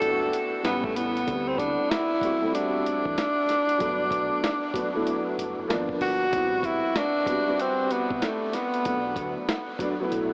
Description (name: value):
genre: hip hop, jazz-hop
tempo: 95 BPM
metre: 4/4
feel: swing 63% on 16ths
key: A dorian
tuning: A4 = 440 Hz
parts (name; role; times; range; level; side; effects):
- breathy tenor saxophone; melody; 0.0-9.5 s; A3 to A4; -28 LUFS; equal; tape echo
- dark baby grand piano; accompaniment; 0.0-10.3 s; E#3 to B4; -32 LUFS; equal; ensemble chorus
- deep dub fingered electric bass; bass; 0.0-10.3 s; F#1 to E2; -45 LUFS; equal; none
- dusty soul sampler-style drum kit; drums; 0.0-10.3 s; hi-hat, kick drum, snare drum; -36 LUFS; equal; none
room: wet huge ambient reverb, RT60 7.9 s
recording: dreamy mix soaked in reverb, vinyl crackle, AM radio sound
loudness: -26 LUFS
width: mono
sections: 0.0-6.3 A section; 6.3-10.3 A section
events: none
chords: 0.0 Bm7; 0.6 A7; 1.3 D7sus4; 3.8 Gmaj7; 5.7 G#dim7; 6.3 Am9; 8.9 Bm7